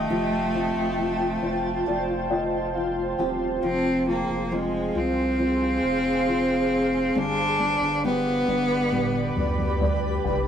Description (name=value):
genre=pop ballad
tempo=68 BPM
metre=4/4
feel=straight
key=unclear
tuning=A4 = 440 Hz
part: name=bright cello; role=melody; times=0.0-9.8 s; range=Ab3 to D4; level=-25 LUFS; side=equal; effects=none
part: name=felt-muted upright piano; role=accompaniment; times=0.0-10.5 s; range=Eb3 to G5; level=-31 LUFS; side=left 3 dB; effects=none
part: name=shimmering ambient pad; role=sustained chords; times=0.0-10.5 s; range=F4 to C6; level=-28 LUFS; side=right 1 dB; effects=chorus, built-in reverb
part: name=flamenco guitar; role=arpeggios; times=0.0-10.5 s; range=G2 to Ab4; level=-34 LUFS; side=right 2 dB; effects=none
part: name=saturated sub bass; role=bass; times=0.0-10.5 s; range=Eb1 to D2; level=-33 LUFS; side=equal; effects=none
part: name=toms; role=drums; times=8.9-10.5 s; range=none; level=-28 LUFS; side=equal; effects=none
room=moderate stone room reverb, RT60 1.1 s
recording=rough rehearsal-room recording, warm saturation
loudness=-22 LUFS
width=side -8 dB against mid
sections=0.0-3.6 A section; 3.6-10.5 B section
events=felt piano fill 1.0-3.6, 9.4-10.5; drum fill 8.9-10.5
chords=0.1 Fadd9; 3.6 Fm; 7.2 G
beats=| 0.10 0.98 1.86 2.75 | 3.63 4.51 5.39 6.28 | 7.16 8.04 8.92 9.81